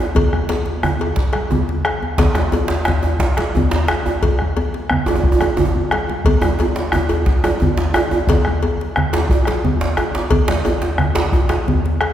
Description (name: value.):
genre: west african traditional, West African drum ensemble.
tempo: 118 BPM (dotted quarters).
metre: 12/8.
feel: straight.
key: none.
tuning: none.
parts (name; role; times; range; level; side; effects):
djembe; percussion; 0.1-12.0 s; none; -21 LUFS; left 2 dB; none.
bombo; percussion; 0.2-12.1 s; none; -20 LUFS; equal; none.
congas; percussion; 0.2-12.1 s; none; -25 LUFS; right 3 dB; none.
cowbell; percussion; 0.2-12.1 s; none; -25 LUFS; left 4 dB; none.
djembe; percussion; 0.5-11.7 s; none; -21 LUFS; right 2 dB; none.
room: wet scoring stage reverb, RT60 2.0 s.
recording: recorded in a church or concert hall.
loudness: -15 LUFS.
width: side -11 dB against mid.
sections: 0.0-12.1 A section.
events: drum fill 5.4-6.3.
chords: none.